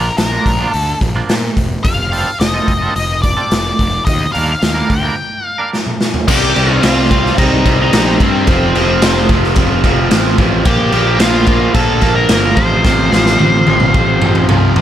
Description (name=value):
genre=quiet-loud alternative rock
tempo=109 BPM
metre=4/4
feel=straight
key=unclear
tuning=A4 = 440 Hz
part: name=octave-fuzz lead guitar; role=melody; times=0.0-14.5 s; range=C4 to C6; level=-17 LUFS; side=left 2 dB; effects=distortion, slapback echo
part: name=twangy electric guitar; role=arpeggios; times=0.0-5.9 s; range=F3 to Bb4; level=-23 LUFS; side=right 5 dB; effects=tremolo
part: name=fuzz picked electric bass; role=bass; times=0.0-14.8 s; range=E1 to Bb2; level=-17 LUFS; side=equal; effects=overdrive
part: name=raw garage drum kit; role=drums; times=0.2-14.8 s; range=crash cymbal, hi-hat, kick drum, snare drum, toms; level=-14 LUFS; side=equal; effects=none
part: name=overdriven electric guitar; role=riff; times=6.3-14.8 s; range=F2 to C4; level=-15 LUFS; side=right 1 dB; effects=none
room=little or no reverb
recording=none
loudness=-10 LUFS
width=side -11 dB against mid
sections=0.0-6.3 A section; 6.3-14.8 B section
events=break 5.2-6.3; drum fill 5.7-6.3, 12.8-14.8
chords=0.0 Bb; 1.8 Fadd9; 4.1 Ebmaj7; 6.3 Cm; 8.5 F; 10.7 Bb5; 12.6 F/A